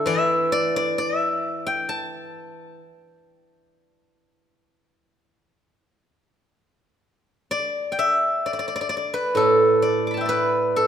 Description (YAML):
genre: chinese traditional, Chinese solo plucked strings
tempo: 65 BPM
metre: 4/4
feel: rubato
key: A shang mode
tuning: A4 = 441 Hz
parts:
  - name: steel-string zither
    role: solo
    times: 0.0-10.9 s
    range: A2 to D6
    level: -20 LUFS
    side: equal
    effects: none
room: moderate concert hall reverb, RT60 2.3 s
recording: minimal, uncompressed stereo recording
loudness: -19 LUFS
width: side -9 dB against mid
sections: 0.0-7.5 A section; 7.5-10.9 B section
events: none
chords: none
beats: | 0.08 0.97 1.88 2.79 | 3.70 4.62 5.56 6.54 | 7.52 8.45 9.38 10.30